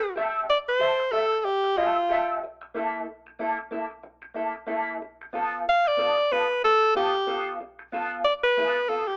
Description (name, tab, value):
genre	funk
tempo	93 BPM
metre	4/4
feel	swing 60% on 16ths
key	unclear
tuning	A4 = 439 Hz
part	breathy alto saxophone	melody	0.0-9.2 s	F4 to F5	-24 LUFS	equal	none
part	semi-hollow electric guitar	accompaniment	0.0-9.1 s	Bb3 to E5	-31 LUFS	equal	wah
room	moderate club reverb, RT60 0.9 s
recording	small speaker sound, faint mains hum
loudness	-25 LUFS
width	mono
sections	0.2-9.2 A section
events	none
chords	0.2 Fmaj9; 2.8 A5; 5.3 G9 (rootless)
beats	| 0.16 0.81 1.46 2.10 | 2.75 3.40 4.04 4.69 | 5.34 5.99 6.63 7.28 | 7.93 8.58